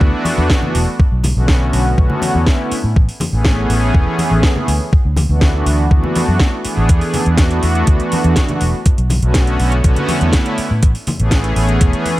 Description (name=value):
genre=nu-disco, nu disco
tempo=122 BPM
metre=4/4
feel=straight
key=E mixolydian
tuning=A4 = 439 Hz
part: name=warm analog pad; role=accompaniment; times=0.0-12.2 s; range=D3 to G#4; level=-18 LUFS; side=equal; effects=chorus, tremolo, sidechain pumping, slapback echo
part: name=vintage muted fingered electric bass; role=bass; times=0.0-11.9 s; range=E1 to A2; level=-16 LUFS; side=equal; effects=sidechain pumping
part: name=electronic kick drum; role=drums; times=0.0-11.9 s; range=none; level=-12 LUFS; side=equal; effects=overdrive
part: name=house drum kit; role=drums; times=0.3-12.2 s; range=hi-hat, snare drum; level=-23 LUFS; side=equal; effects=none
part: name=congas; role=percussion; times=0.3-12.2 s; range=none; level=-23 LUFS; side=left 2 dB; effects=none
room=digital ambience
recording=none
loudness=-12 LUFS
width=side -17 dB against mid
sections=0.0-12.2 A section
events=none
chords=0.0 E9sus4; 1.0 Bm9; 2.7 Amaj9; 4.7 D6; 6.9 E9sus4; 8.9 Bm9; 10.6 Amaj9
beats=0.01 0.50 | 0.99 1.48 1.98 2.47 | 2.96 3.45 3.94 4.43 | 4.93 5.42 5.91 6.40 | 6.89 7.39 7.88 8.37 | 8.86 9.35 9.85 10.34 | 10.83 11.32 11.81